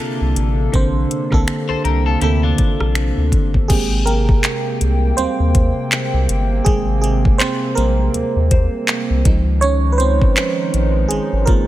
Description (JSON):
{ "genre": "contemporary R&B", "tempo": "81 BPM", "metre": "4/4", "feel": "swing 58% on 16ths", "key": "Ab major", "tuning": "A4 = 440 Hz", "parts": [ { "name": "FM electric piano", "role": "accompaniment", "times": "0.0-11.7 s", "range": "D3 to Db5", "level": "-20 LUFS", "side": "right 3 dB", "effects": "chorus" }, { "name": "hollow soft pad", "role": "sustained chords", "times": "0.0-11.7 s", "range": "C3 to G5", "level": "-24 LUFS", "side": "equal", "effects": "chorus, sidechain pumping" }, { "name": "clean electric guitar", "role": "arpeggios", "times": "0.0-3.5 s", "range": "D4 to C5", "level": "-26 LUFS", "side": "left 8 dB", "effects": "lush chorus, digital delay" }, { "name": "round analog bass", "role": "bass", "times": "0.2-11.6 s", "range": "G1 to Eb2", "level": "-18 LUFS", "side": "equal", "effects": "none" }, { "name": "smooth R&B drum kit", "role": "drums", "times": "0.4-11.7 s", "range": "crash cymbal, finger snaps, handclaps, hi-hat, kick drum, rim click", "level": "-17 LUFS", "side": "equal", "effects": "none" }, { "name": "soft synth bell", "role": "texture", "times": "4.1-11.7 s", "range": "F4 to G5", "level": "-31 LUFS", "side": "left 3 dB", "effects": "chorus, digital delay" } ], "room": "little or no reverb", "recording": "none", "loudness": "-14 LUFS", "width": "side -14 dB against mid", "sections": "0.0-3.7 A section; 3.7-11.7 B section", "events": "FM electric piano solo 3.7-11.7", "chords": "0.0 Bbmaj9; 3.7 Abmaj9; 9.3 Dbmaj9" }